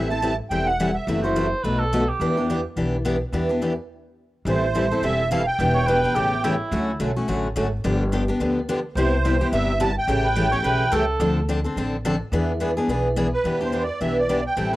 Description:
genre	acoustic string swing (jazz manouche)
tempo	214 BPM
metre	4/4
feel	swing 57% on 8ths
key	E minor, A minor from 4.5 s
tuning	A4 = 439 Hz
part	musette accordion	melody	0.0-1.2, 4.5-6.6, 9.0-11.1, 13.3-14.7 s	B4 to A5	-24 LUFS	right 1 dB	plate reverb
part	picked old ladder-braced acoustic guitar	accompaniment	0.0-14.8 s	B2 to B4	-29 LUFS	right 4 dB	cassette tape, plate reverb
part	picked steel-string acoustic guitar	accompaniment	0.0-14.8 s	B2 to A4	-24 LUFS	left 2 dB	cassette tape, plate reverb
part	upright bass	bass	0.0-14.8 s	E1 to E2	-26 LUFS	equal	none
part	warm cor anglais	second line	1.2-2.6, 5.7-7.0, 10.2-11.5, 14.7-14.8 s	E4 to C#5	-26 LUFS	right 2 dB	cassette tape, plate reverb
room	moderate booth ambience, RT60 0.2 s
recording	home recording on cassette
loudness	-20 LUFS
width	side -16 dB against mid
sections	0.0-4.5 A section; 4.5-13.4 B section; 13.4-14.8 A section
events	stop 3.9-4.5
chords	0.0 Am7; 1.1 F#m7b5; 1.6 B7; 2.2 Em7; 3.9 N.C.; 4.5 Am7; 5.6 Em7; 6.2 A7; 6.7 Dmaj7; 7.8 G7; 9.0 Cmaj7; 10.1 A7; 11.2 Dm7; 12.3 E7; 13.4 Em7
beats	0.22 0.50 0.78 | 1.07 1.35 1.63 1.92 | 2.20 2.48 2.76 3.05 | 3.33 3.61 3.90 4.18 | 4.46 4.74 5.03 5.31 | 5.59 5.87 6.15 6.43 | 6.71 6.99 7.28 7.55 | 7.84 8.12 8.40 8.68 | 8.96 9.24 9.52 9.80 | 10.08 10.36 10.64 10.92 | 11.20 11.48 11.76 12.04 | 12.32 12.60 12.88 13.16 | 13.44 13.72 14.01 14.29 | 14.57

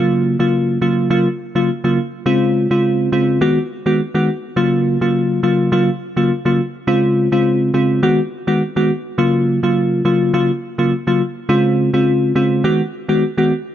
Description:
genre	afrobeats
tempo	104 BPM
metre	4/4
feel	swing 55% on 16ths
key	unclear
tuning	A4 = 441 Hz
part	bell-like FM electric piano	solo	0.0-13.5 s	Db3 to Gb4	-14 LUFS	equal	chorus
room	light reverb, digital ambience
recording	none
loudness	-14 LUFS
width	side -11 dB against mid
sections	0.0-13.7 A section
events	none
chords	0.0 Gbmaj7; 2.3 Dbmaj7; 3.4 Cb6; 4.6 Gbmaj7; 6.9 Dbmaj7; 8.0 Cb6; 9.2 Gbmaj7; 11.5 Dbmaj7; 12.6 Cb6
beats	0.53 1.11 1.68 | 2.26 2.84 3.41 3.99 | 4.57 5.14 5.72 6.30 | 6.88 7.45 8.03 8.61 | 9.18 9.76 10.34 10.91 | 11.49 12.07 12.64 13.22

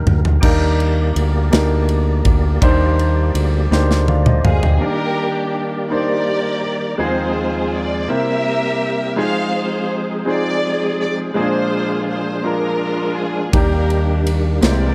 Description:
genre	slow gospel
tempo	55 BPM (dotted quarters)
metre	6/8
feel	straight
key	Eb major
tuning	A4 = 441 Hz
part	clear upright piano	accompaniment	0.0-14.9 s	Bb2 to G5	-24 LUFS	equal	none
part	percussive tonewheel organ	sustained chords	0.0-14.9 s	Eb2 to D5	-27 LUFS	equal	slow rotary speaker, overdrive, chorus vibrato
part	fingered electric bass with an envelope filter	bass	0.0-4.8, 13.5-14.9 s	C2 to Eb2	-18 LUFS	equal	none
part	modern studio drum kit	drums	0.1-4.8, 13.5-14.8 s	crash cymbal, kick drum, ride cymbal, snare drum, toms	-20 LUFS	equal	none
part	warm studio string section	melody	4.4-14.9 s	D4 to F5	-24 LUFS	equal	none
room	little or no reverb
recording	none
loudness	-18 LUFS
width	mono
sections	0.4-4.8 A section; 4.8-14.9 B section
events	drum fill 0.0-0.4, 3.7-4.8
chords	0.4 Ebmaj7; 7.0 Ab6/Eb; 8.1 C7; 9.2 Fm7; 11.4 Bb7; 13.5 Ebmaj7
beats	| 0.43 1.53 | 2.62 3.71 | 4.81 5.90 | 6.99 8.09 | 9.18 10.27 | 11.36 12.45 | 13.54 14.63

